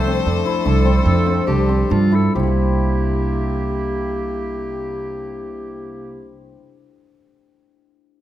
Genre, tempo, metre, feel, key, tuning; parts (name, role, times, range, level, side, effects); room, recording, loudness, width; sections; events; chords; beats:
contemporary instrumental, chamber music in an uneven meter; 132-157 BPM; 7/4; straight; C mixolydian; A4 = 440 Hz
rich violin; melody; 0.0-1.9 s; C5; -27 LUFS; left 7 dB
breathy clarinet; second line; 0.0-6.3 s; F4 to C5; -26 LUFS; left 1 dB
warm woodwind section; sustained chords; 0.0-6.3 s; C3 to A4; -27 LUFS; right 1 dB
hammered dulcimer; arpeggios; 0.0-6.7 s; A3 to C5; -25 LUFS; left 6 dB
upright bass; bass; 0.0-6.5 s; C2 to G2; -18 LUFS; right 2 dB
moderate recital hall reverb, RT60 1.7 s; -16 LUFS; side -12 dB against mid
0.0-2.4 A section; 2.4-5.5 B section
slowing down 0.0-2.4
0.0 F; 2.4 C7
0.28 0.67 1.07 1.48 1.91 | 2.35 2.81 3.26 3.71 4.17 4.62 5.08